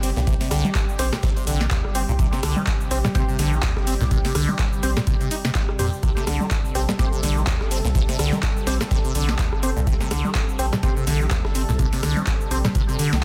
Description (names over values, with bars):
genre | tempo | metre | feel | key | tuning
acid house | 125 BPM | 4/4 | swing 57% on 16ths | C dorian | A4 = 440 Hz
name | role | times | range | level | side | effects
warm analog pad | sustained chords | 0.0-13.2 s | C3 to A4 | -34 LUFS | equal | chorus, sidechain pumping
liquid acid bass | riff | 0.0-13.2 s | Bb2 to Eb4 | -29 LUFS | equal | phaser, tube saturation, lush chorus, sidechain pumping, tape echo
round analog bass | bass | 0.0-13.2 s | G1 to F2 | -27 LUFS | equal | sidechain pumping
booming analog drum machine | drums | 0.0-13.2 s | congas, handclaps, hi-hat, rim click, shaker, snare drum | -30 LUFS | equal | none
breakbeat sampler-style drum kit | drums | 0.0-13.2 s | hi-hat, snare drum | -39 LUFS | equal | none
electronic kick drum | drums | 0.3-12.9 s | none | -25 LUFS | equal | none
percussive organ stab | stabs | 1.0-12.6 s | C4 to C5 | -33 LUFS | equal | ensemble chorus, tape echo
room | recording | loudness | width
little or no reverb | dense, heavily limited modern master | -22 LUFS | mono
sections
0.0-13.2 A section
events
none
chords
0.0 C5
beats
| 0.27 0.75 1.23 1.71 | 2.19 2.67 3.15 3.63 | 4.11 4.59 5.07 5.55 | 6.03 6.51 6.99 7.47 | 7.95 8.43 8.91 9.39 | 9.87 10.35 10.83 11.31 | 11.79 12.27 12.75 13.23